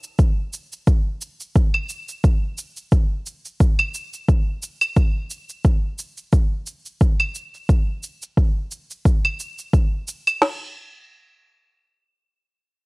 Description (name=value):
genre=organic downtempo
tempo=88 BPM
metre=4/4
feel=swing 56% on 16ths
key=none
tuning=none
part: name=cabasa and claves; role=drums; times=0.0-10.4 s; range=none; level=-24 LUFS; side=right 1 dB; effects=overdrive, studio reverb
part: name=organic electronic drum kit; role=drums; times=0.2-10.6 s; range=crash cymbal, kick drum, snare drum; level=-17 LUFS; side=equal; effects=overdrive, studio reverb
room=digital ambience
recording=worn, warbling old tape, cassette tape, warbly pitch drift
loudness=-19 LUFS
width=side -30 dB against mid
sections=0.0-10.4 A section; 10.4-12.9 B section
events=none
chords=none